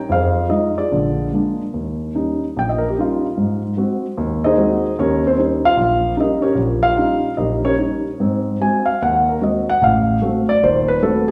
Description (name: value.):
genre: solo jazz.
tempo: 149 BPM.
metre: 4/4.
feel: swing 64% on 8ths, rubato.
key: Eb mixolydian.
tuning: A4 = 438 Hz.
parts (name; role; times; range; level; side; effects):
dark concert grand piano; solo; 0.0-11.3 s; Eb1 to Ab5; -18 LUFS; equal; none.
room: wet recital hall reverb, RT60 1.3 s.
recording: recorded in a church or concert hall.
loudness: -18 LUFS.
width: mono.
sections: 0.0-1.7 A section; 1.7-11.3 B section.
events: grand piano solo 1.7-11.3.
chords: 0.1 Fm7; 0.9 Bb7; 1.7 Eb7; 3.4 Ab7; 5.0 Eb7; 8.2 Ab7; 9.8 Adim7.